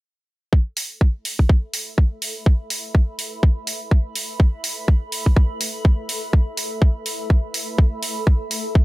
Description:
bass house; 124 BPM; 4/4; swing 58% on 16ths; A4 = 440 Hz
electronic kick drum; drums; 0.5-8.8 s; -14 LUFS; equal
granular cloud pad; texture; 1.8-8.8 s; A4 to B5; -32 LUFS; equal; built-in reverb, sidechain pumping
electronic hi-hat; drums; 0.8-8.6 s; -25 LUFS; right 1 dB
little or no reverb; -18 LUFS; side -19 dB against mid
0.5-8.8 A section
fade-in on ambient pad 0.5-8.8
0.5 A5

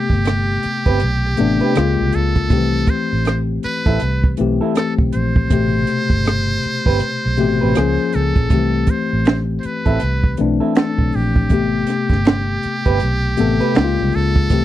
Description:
R&B, neo-soul; 80 BPM; 4/4; swing 61% on 16ths; C major; A4 = 440 Hz
trumpet with metal mute; melody; 0.0-14.6 s; G4 to C5; -23 LUFS; right 1 dB; slapback echo
mellow tine electric piano; accompaniment; 0.0-14.6 s; B2 to A4; -19 LUFS; left 6 dB
vintage muted fingered electric bass; bass; 0.1-14.6 s; G1 to Db2; -19 LUFS; right 1 dB
compact cocktail drum kit; drums; 0.1-14.6 s; finger snaps, hi-hat, kick drum, rim click, snare drum; -16 LUFS; right 1 dB
electric guitar through a small old amp; second line; 0.9-13.7 s; C4 to B4; -21 LUFS; right 6 dB
little or no reverb; dry, close 1970s-style studio recording; -15 LUFS; side -13 dB against mid
0.0-14.6 A section
0.0 Am9; 1.8 Db6; 2.5 C6; 5.5 Am9; 7.8 Db6; 8.5 C6; 11.5 Am9; 13.8 Db6

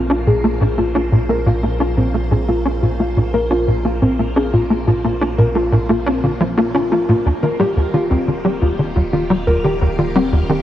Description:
ambient, sequencer-driven space music; 88 BPM; 4/4; straight; A4 = 440 Hz
phased string machine; sustained chords; 0.0-10.6 s; Bb2 to F5; -29 LUFS; right 1 dB; ensemble chorus, phaser
soft round pluck; arpeggios; 0.0-10.6 s; F3 to Bb4; -19 LUFS; left 1 dB; chorus, auto-pan, tape echo
tight sequencer bass; riff; 0.0-10.6 s; Eb2 to D4; -17 LUFS; equal; ensemble chorus, tape echo
round analog bass; bass; 0.0-10.6 s; Eb1 to Bb1; -24 LUFS; equal
moderate huge ambient reverb, RT60 7.9 s; worn, warbling old tape, cassette tape, warbly pitch drift; -14 LUFS; side -12 dB against mid
0.0-10.6 A section
fade-in on string machine 0.0-10.6
0.0 Bbsus2; 7.3 Ebadd9

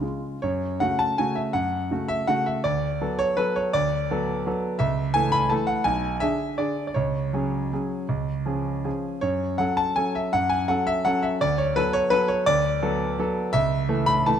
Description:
classical, piano waltz; 146-179 BPM; 3/4; rubato; F# minor; A4 = 438 Hz
clear concert grand piano; solo; 0.0-14.4 s; B1 to B5; -22 LUFS; equal
moderate concert hall reverb, RT60 1.9 s; close, detailed microphones; -22 LUFS; side -8 dB against mid
0.4-14.4 A section
0.4 F#m; 2.6 D6; 4.8 A/C#; 5.8 G#dim/B; 6.9 C#sus4; 8.1 C#; 9.2 F#m; 11.4 D6; 13.5 A/C#

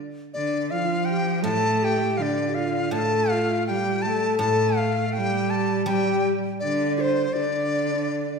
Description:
chinese traditional, Chinese chamber ensemble; 81 BPM; 2/4; straight; D yu mode; A4 = 440 Hz
reedy dizi; melody; 0.3-8.4 s; C5 to A5; -26 LUFS; left 2 dB
breathy mellow low xiao; second line; 0.4-8.4 s; D4 to C5; -27 LUFS; left 4 dB
rich cello; second line; 0.4-8.4 s; D3 to A3; -27 LUFS; right 5 dB
guzheng; accompaniment; 1.4-8.1 s; A2 to G3; -30 LUFS; equal
wet scoring stage reverb, RT60 1.5 s; recorded in a church or concert hall; -21 LUFS; side -5 dB against mid
0.0-8.4 A section

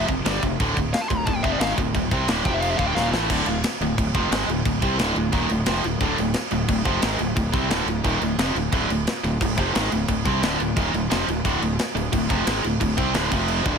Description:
heavy metal; 177 BPM; 4/4; straight; D minor; A4 = 441 Hz
high-gain lead guitar; melody; 0.0-3.1 s; D5 to C6; -29 LUFS; left 2 dB; distortion, tape echo
tight distorted guitar; riff; 0.0-13.8 s; D2 to C4; -23 LUFS; right 1 dB; distortion
fuzz fingered electric bass; bass; 0.0-13.8 s; D1 to C2; -27 LUFS; equal; overdrive
tight metal drum kit; drums; 0.1-13.7 s; crash cymbal, kick drum, snare drum; -25 LUFS; equal
little or no reverb; -20 LUFS; side -6 dB against mid
0.0-3.3 A section; 3.3-13.8 B section
lead electric guitar solo 0.0-3.3; drum fill 3.0-3.3
0.0 F5; 0.6 Dm; 2.5 F5; 2.8 D5; 3.3 Dm; 13.3 F5

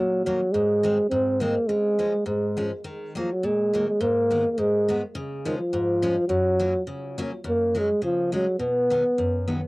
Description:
alpine folk, alpine dance band; 105 BPM; 2/4; swing 53% on 8ths; F# major; A4 = 438 Hz
dark euphonium; melody; 0.0-9.4 s; D#3 to B#3; -22 LUFS; equal; tape echo
picked steel-string acoustic guitar; accompaniment; 0.0-9.6 s; F#2 to C#4; -30 LUFS; left 1 dB
wet booth ambience, RT60 0.3 s; home recording on cassette; -21 LUFS; side -22 dB against mid
0.0-7.5 A section; 7.5-9.7 B section
0.0 D#m; 0.5 G#; 1.7 C#; 2.9 D#m; 4.0 G#m; 5.2 C#; 6.3 F#; 7.5 F#sus2; 8.6 B

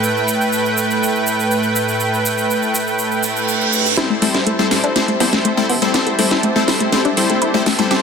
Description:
progressive house; 122 BPM; 4/4; straight; A minor; A4 = 437 Hz
supersaw pad; sustained chords; 0.0-8.0 s; A2 to A5; -18 LUFS; right 2 dB; low-pass filter
egg shaker; percussion; 0.0-4.0 s; -25 LUFS; right 2 dB
reverse cymbal and riser; sound effects; 3.2-8.0 s; -25 LUFS; right 4 dB
analog pluck; arpeggios; 4.0-8.0 s; A3 to G4; -19 LUFS; left 2 dB; chorus, ping-pong delay
supersaw stab; stabs; 4.0-8.0 s; G3 to C5; -17 LUFS; left 3 dB; ping-pong delay
house drum kit; drums; 4.0-8.0 s; hi-hat, snare drum; -20 LUFS; equal; small room ambience
plucky analog bass; bass; 4.2-7.9 s; A1 to A2; -32 LUFS; equal
light reverb; dense, heavily limited modern master; -14 LUFS; side -6 dB against mid
0.0-4.0 A section; 4.0-8.0 B section
reverse cymbal 3.2-4.0; build-up 4.0-8.0; drum fill 4.0-8.0
0.0 Gadd9/A; 4.0 Am7

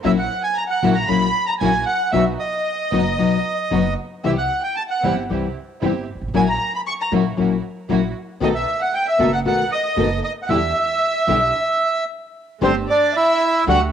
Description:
tango; 115 BPM; 4/4; rubato; A4 = 439 Hz
nylon-string guitar; accompaniment; 0.0-13.8 s; B2 to G4; -21 LUFS; left 6 dB; cassette tape
rich chamber string section; stabs; 0.0-13.9 s; A3 to A4; -28 LUFS; right 9 dB; cassette tape
upright bass; bass; 0.0-13.9 s; F#1 to E2; -26 LUFS; right 3 dB
bandoneon; melody; 0.1-13.8 s; C4 to C#6; -20 LUFS; right 4 dB
warm studio violin section; second line; 0.1-13.8 s; C5 to C#6; -25 LUFS; left 6 dB; cassette tape
moderate spring reverb, RT60 2.0 s, studio ambience; home recording on cassette; -17 LUFS; side -8 dB against mid
0.0-12.6 A section; 12.6-13.9 B section
stop 11.5-12.6
0.1 F#7/A#; 2.1 B; 4.2 C; 6.3 F#7/A#; 8.4 B7; 10.5 Em7; 12.6 Gsus2

